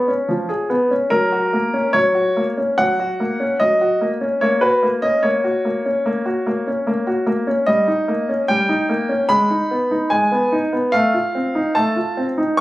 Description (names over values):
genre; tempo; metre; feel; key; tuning
classical-period piano sonatina; 73 BPM; 4/4; rubato; F# major; A4 = 440 Hz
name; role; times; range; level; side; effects
clear baby grand piano; solo; 0.0-12.6 s; E#3 to C#6; -16 LUFS; equal; none
room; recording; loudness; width
moderate large studio reverb, RT60 1.2 s; recorded on a phone in the room, club reverb, compression, nothing above 10.7 kHz; -16 LUFS; side -17 dB against mid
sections
0.0-12.6 A section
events
none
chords
0.0 C#7/E#; 1.1 F#; 4.4 F#/A#; 7.7 D#7/G; 9.3 G#m; 10.9 F7/A